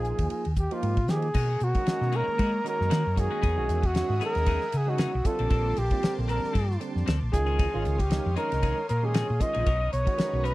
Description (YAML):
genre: electric jazz fusion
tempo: 115 BPM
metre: 4/4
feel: swing 55% on 16ths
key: unclear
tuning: A4 = 440 Hz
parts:
  - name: breathy trumpet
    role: melody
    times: 0.0-10.5 s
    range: F4 to D#5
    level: -29 LUFS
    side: equal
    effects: slapback echo
  - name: mellow concert flute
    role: second line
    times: 0.0-0.5 s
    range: Ab5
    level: -42 LUFS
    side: left 6 dB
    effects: none
  - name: barky tine electric piano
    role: accompaniment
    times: 0.0-10.5 s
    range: D3 to G#4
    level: -34 LUFS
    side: right 5 dB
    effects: ensemble chorus
  - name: hollow-body short-scale fingered electric bass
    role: bass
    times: 0.0-10.5 s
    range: G#1 to G#3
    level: -27 LUFS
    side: equal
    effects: none
  - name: damped 70s drum kit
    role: drums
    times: 0.0-10.5 s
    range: crash cymbal, hi-hat, kick drum, ride cymbal, snare drum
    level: -27 LUFS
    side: equal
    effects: none
  - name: lush unison pad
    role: sustained chords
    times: 1.3-10.5 s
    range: A#3 to D#6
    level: -40 LUFS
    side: left 1 dB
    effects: chorus
  - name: clean electric guitar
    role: stabs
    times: 1.3-10.5 s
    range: D#3 to A#4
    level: -38 LUFS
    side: left 10 dB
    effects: wide subtle chorus
room: little or no reverb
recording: dry, close 1970s-style studio recording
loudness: -24 LUFS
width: side -18 dB against mid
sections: 0.0-1.4 A section; 1.4-10.5 B section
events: none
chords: 0.0 Ebsus24; 1.4 Bmaj9; 3.4 Emaj9; 5.3 A#maj9; 7.3 C#maj9; 9.7 Bmaj9